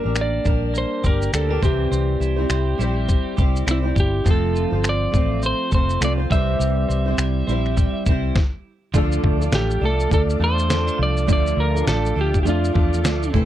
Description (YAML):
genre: acoustic pop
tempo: 102 BPM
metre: 4/4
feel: swing 60% on 16ths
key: D minor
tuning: A4 = 440 Hz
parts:
  - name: electric slide guitar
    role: melody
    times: 0.0-13.3 s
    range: E4 to E5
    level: -25 LUFS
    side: right 1 dB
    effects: none
  - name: flamenco guitar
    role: accompaniment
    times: 0.0-13.5 s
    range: C3 to C5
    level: -25 LUFS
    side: equal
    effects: double-tracked left and right
  - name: twelve-string electric guitar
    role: arpeggios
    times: 0.0-13.5 s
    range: E3 to A4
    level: -30 LUFS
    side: right 7 dB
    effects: spring reverb
  - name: vintage muted fingered electric bass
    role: bass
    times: 0.1-13.5 s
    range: F1 to F2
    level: -22 LUFS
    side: equal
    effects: none
  - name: dusty soul sampler-style drum kit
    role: drums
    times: 0.2-13.5 s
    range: finger snaps, kick drum, shaker, snare drum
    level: -20 LUFS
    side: equal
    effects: none
  - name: tonewheel organ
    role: sustained chords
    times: 8.9-13.5 s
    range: A4 to D6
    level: -34 LUFS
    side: equal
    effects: overdrive, chorus vibrato, slow rotary speaker
room: little or no reverb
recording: dark, warm production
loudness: -18 LUFS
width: side -12 dB against mid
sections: 0.0-8.9 A section; 8.9-13.5 B section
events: stop 8.4-8.9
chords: 0.0 Gm; 1.6 C; 4.3 F; 6.3 C; 8.9 Dm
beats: 0.16 0.74 1.33 | 1.92 2.50 3.09 3.67 | 4.26 4.84 5.43 6.01 | 6.60 7.19 7.77 8.36 | 8.94 9.53 10.12 10.70 | 11.29 11.87 12.46 13.05